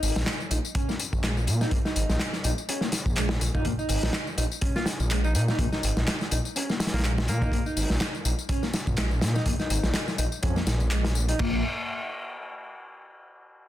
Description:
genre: breakbeat, breaks.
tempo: 124 BPM.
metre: 4/4.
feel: swing 56% on 16ths.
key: Bb minor.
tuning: A4 = 440 Hz.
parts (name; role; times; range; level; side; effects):
mellow electric guitar; riff; 0.0-11.6 s; Ab3 to Eb4; -33 LUFS; equal; tube saturation, lush chorus, ping-pong delay.
detuned saw bass; bass; 0.0-11.6 s; Ab1 to Bb2; -26 LUFS; equal; none.
crunchy breakbeat drum kit; drums; 0.0-11.5 s; crash cymbal, hi-hat, kick drum, snare drum; -29 LUFS; equal; none.
electronic tambourine and handclaps; drums; 0.0-11.4 s; none; -34 LUFS; left 2 dB; none.
breathy alto saxophone; melody; 4.8-7.7 s; Bb3 to F4; -36 LUFS; equal; AM radio sound, vintage 12-bit sampler grit, ping-pong delay.
room: small room ambience.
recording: dense, heavily limited modern master.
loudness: -24 LUFS.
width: side -13 dB against mid.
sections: 0.0-11.4 A section; 11.4-13.3 B section.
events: drop 0.0-11.4.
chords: 0.0 Bb7(no3); 11.4 N.C..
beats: 0.27 0.75 1.23 | 1.72 2.20 2.69 3.17 | 3.65 4.14 4.62 5.11 | 5.59 6.07 6.56 7.04 | 7.53 8.01 8.49 8.98 | 9.46 9.94 10.43 10.91 | 11.40.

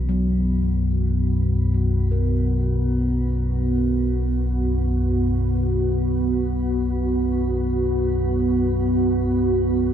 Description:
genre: dark ambient drone.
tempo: free time.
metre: none.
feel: none.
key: unclear.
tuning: A4 = 442 Hz.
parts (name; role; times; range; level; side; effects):
deep dark ambient pad; sustained chords; 0.0-9.9 s; B3 to F#4; -23 LUFS; right 1 dB; chorus, built-in reverb, shimmer reverb.
gamelan-type bossed gongs; arpeggios; 0.0-8.7 s; E3 to A#4; -29 LUFS; left 2 dB; ping-pong delay.
deep rumbling drone; drone; 0.0-9.9 s; B1 to F#2; -22 LUFS; equal; built-in reverb.
room: wet cathedral reverb, RT60 5.2 s.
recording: dark, warm production.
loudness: -19 LUFS.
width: side -9 dB against mid.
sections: 0.0-9.9 A section.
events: filter sweep on synth drone 0.0-9.9.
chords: 0.0 B5.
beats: free time.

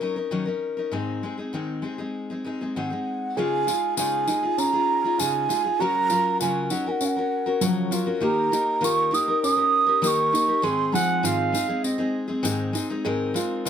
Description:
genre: acoustic folk duo or small band.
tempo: 99 BPM.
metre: 4/4.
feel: straight.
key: Db major.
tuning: A4 = 440 Hz.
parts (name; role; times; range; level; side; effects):
picked steel-string acoustic guitar; accompaniment; 0.0-13.7 s; Ab2 to Bb4; -26 LUFS; left 4 dB; none.
mellow hollow wooden flute; melody; 2.8-11.5 s; F5 to Eb6; -23 LUFS; right 5 dB; plate reverb.
felt-muted upright piano; arpeggios; 3.4-13.7 s; F3 to Ab4; -29 LUFS; right 2 dB; none.
tambourine; percussion; 3.7-13.7 s; none; -31 LUFS; left 6 dB; none.
mellow clarinet; second line; 10.9-12.3 s; Eb5 to Gb5; -26 LUFS; right 3 dB; none.
room: moderate studio reverb, RT60 0.6 s.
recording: none.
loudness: -21 LUFS.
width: side -8 dB against mid.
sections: 0.0-3.4 A section; 3.4-13.7 B section.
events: none.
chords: 0.0 Ebm7; 0.9 Ab; 3.4 Dbadd9; 5.8 Gb/Db; 8.2 Eb; 10.6 Ab; 13.1 Abadd9.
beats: 0.32 | 0.93 1.54 2.15 2.76 | 3.37 3.98 4.58 5.19 | 5.80 6.40 7.01 7.62 | 8.22 8.83 9.43 10.04 | 10.64 11.25 11.85 12.46 | 13.06 13.66.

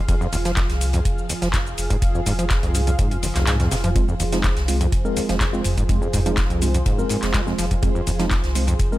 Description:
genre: acid house.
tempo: 124 BPM.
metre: 4/4.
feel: straight.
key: F minor pentatonic.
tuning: A4 = 440 Hz.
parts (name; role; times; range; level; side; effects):
warm analog pad; sustained chords; 0.0-9.0 s; F3 to F5; -29 LUFS; right 1 dB; chorus, sidechain pumping.
overdriven acid bass; riff; 0.1-8.7 s; F1 to Ab3; -26 LUFS; equal; tube saturation, sidechain pumping, dub echo.
booming analog drum machine; drums; 0.1-9.0 s; handclaps, hi-hat, shaker, toms; -27 LUFS; equal; studio reverb.
electronic kick drum; drums; 0.1-8.9 s; none; -22 LUFS; equal; studio reverb.
swinging big-band drum kit; drums; 0.1-8.9 s; ride cymbal, snare drum; -35 LUFS; left 2 dB; sidechain pumping on cymbals, high-pass filter on cymbals, studio reverb, high-pass filter on snare, high-pass filter on room.
warm sub bass; bass; 0.3-8.9 s; F1 to C2; -24 LUFS; equal; tube saturation, sidechain pumping.
tine electric piano; stabs; 4.0-9.0 s; Ab3 to Bb4; -27 LUFS; right 1 dB; medium stereo tremolo, dub echo.
room: digital ambience.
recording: none.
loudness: -18 LUFS.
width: side -16 dB against mid.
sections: 0.0-9.0 A section.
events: drum fill 3.2-4.0; kick drops out 3.5-4.0.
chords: 0.0 Fm.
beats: | 0.09 0.57 1.05 1.54 | 2.02 2.50 2.99 3.47 | 3.96 4.44 4.92 5.41 | 5.89 6.38 6.86 7.34 | 7.83 8.31 8.79.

